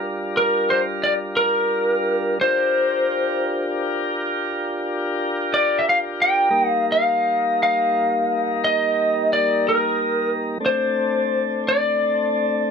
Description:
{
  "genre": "blues",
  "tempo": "58 BPM (dotted quarters)",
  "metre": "12/8",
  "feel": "straight",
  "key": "G minor",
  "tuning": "A4 = 442 Hz",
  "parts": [
    { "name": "tonewheel organ", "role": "sustained chords", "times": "0.0-12.7 s", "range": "G3 to Bb4", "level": "-24 LUFS", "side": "equal", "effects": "slow rotary speaker" },
    { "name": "lightly driven lead guitar", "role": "melody", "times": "0.4-12.7 s", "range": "Bb4 to G5", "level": "-19 LUFS", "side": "left 1 dB", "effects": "none" }
  ],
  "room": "moderate club reverb, RT60 0.5 s",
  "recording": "none",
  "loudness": "-18 LUFS",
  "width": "side -6 dB against mid",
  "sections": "0.0-12.7 A section",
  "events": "none",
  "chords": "0.0 Gm7; 6.5 Eb; 10.6 D5"
}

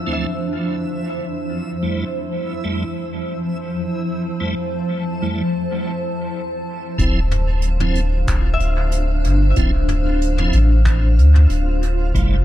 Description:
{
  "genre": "ambient dub",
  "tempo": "93 BPM",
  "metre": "4/4",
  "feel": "swing 55% on 16ths",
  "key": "D minor",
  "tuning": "A4 = 440 Hz",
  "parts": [
    { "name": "granular cloud pad", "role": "sustained chords", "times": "0.0-12.4 s", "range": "F3 to A5", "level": "-24 LUFS", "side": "equal", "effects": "built-in reverb, vintage 12-bit sampler grit" },
    { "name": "concert harp", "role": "arpeggios", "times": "0.0-2.3, 8.5-10.7 s", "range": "F4 to E5", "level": "-32 LUFS", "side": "left 6 dB", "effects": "tape echo" },
    { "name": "backwards swelling texture", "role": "texture", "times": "0.0-12.4 s", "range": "E4 to E6", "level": "-33 LUFS", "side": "right 2 dB", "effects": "built-in reverb" },
    { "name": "tonewheel organ", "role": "stabs", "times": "0.1-12.4 s", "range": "D2 to E4", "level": "-28 LUFS", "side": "right 2 dB", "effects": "overdrive, chorus vibrato, slow rotary speaker, dub echo" },
    { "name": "soft dub sub bass", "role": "bass", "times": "7.0-12.4 s", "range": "D1 to D2", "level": "-15 LUFS", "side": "equal", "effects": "none" },
    { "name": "electronic kick drum", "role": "drums", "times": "7.0-12.3 s", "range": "none", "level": "-22 LUFS", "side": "equal", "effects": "none" },
    { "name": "soft brush drum kit", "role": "drums", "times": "7.0-12.3 s", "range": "finger snaps, hi-hat, toms", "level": "-29 LUFS", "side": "left 1 dB", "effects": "dub echo" }
  ],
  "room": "studio reverb",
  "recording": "echo-heavy mix",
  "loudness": "-17 LUFS",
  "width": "side -13 dB against mid",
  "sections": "0.0-7.0 A section; 7.0-12.4 B section",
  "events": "filter sweep on ambient pad 0.0-7.0; filter sweep on harp 0.0-7.0; break 5.7-7.0",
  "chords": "0.0 Dm9; 1.8 Fmaj7; 7.0 Dm9"
}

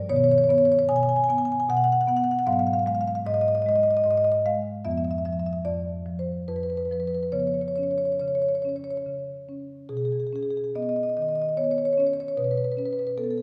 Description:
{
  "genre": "classical, contemporary piece for solo marimba",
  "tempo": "67-77 BPM",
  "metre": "3/4",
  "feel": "rubato",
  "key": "B lydian",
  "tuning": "A4 = 439 Hz",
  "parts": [
    { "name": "marimba with soft mallets", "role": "solo", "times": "0.0-13.4 s", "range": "F2 to G#5", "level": "-25 LUFS", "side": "equal", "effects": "none" }
  ],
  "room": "wet recital hall reverb, RT60 1.4 s",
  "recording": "recorded in a church or concert hall",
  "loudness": "-24 LUFS",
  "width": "mono",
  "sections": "0.0-9.9 A section; 9.9-13.4 B section",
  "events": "none",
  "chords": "0.1 B69; 2.5 G#m7; 4.8 Dm69/F; 7.3 C#7; 9.9 B69; 12.4 F#madd11/B (rootless)"
}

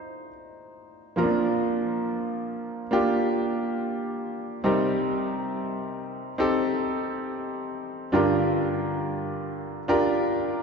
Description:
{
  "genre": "pop",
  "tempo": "69 BPM",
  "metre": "4/4",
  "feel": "straight",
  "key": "Bb major",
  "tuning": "A4 = 440 Hz",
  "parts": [
    { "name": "clear grand piano", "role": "solo", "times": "0.0-10.6 s", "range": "G2 to C5", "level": "-24 LUFS", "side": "equal", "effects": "none" }
  ],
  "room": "wet church reverb, RT60 3.2 s",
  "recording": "recorded in a church or concert hall, nothing above 8.0 kHz",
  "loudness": "-24 LUFS",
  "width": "side -5 dB against mid",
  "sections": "0.0-1.2 A section; 1.2-10.6 B section",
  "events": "grand piano solo 0.0-1.2",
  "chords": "0.0 F7/A; 1.2 Bb; 4.7 Cm7; 8.1 Gm7"
}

